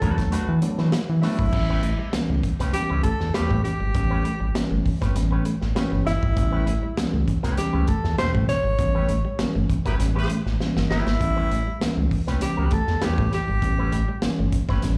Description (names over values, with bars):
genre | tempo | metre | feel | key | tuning
funk | 99 BPM | 4/4 | straight | A mixolydian | A4 = 439 Hz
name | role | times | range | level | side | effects
breathy alto saxophone | melody | 0.0-14.5 s | E4 to C#5 | -30 LUFS | equal | none
electric guitar with an envelope filter | accompaniment | 0.0-14.9 s | A3 to B4 | -36 LUFS | equal | slapback echo
mellow tine electric piano | stabs | 0.0-15.0 s | B2 to E4 | -30 LUFS | equal | slapback echo
round analog bass | bass | 0.0-15.0 s | G1 to E3 | -26 LUFS | equal | none
crunchy breakbeat drum kit | drums | 0.0-15.0 s | crash cymbal, hi-hat, kick drum, snare drum | -29 LUFS | equal | none
electric guitar at the edge of break-up | riff | 1.7-14.9 s | G3 to C#4 | -36 LUFS | equal | slapback echo
warm horn section | second line | 9.9-10.3 s | E4 to B4 | -35 LUFS | equal | slapback echo
room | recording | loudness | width
small room ambience | live gig heard through the venue's PA, club reverb | -23 LUFS | mono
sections
0.0-1.5 A section; 1.5-15.0 B section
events
break 0.0-1.5; band accent 8.8-11.2; drum fill 10.6-11.2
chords
0.0 E9sus4; 1.5 A9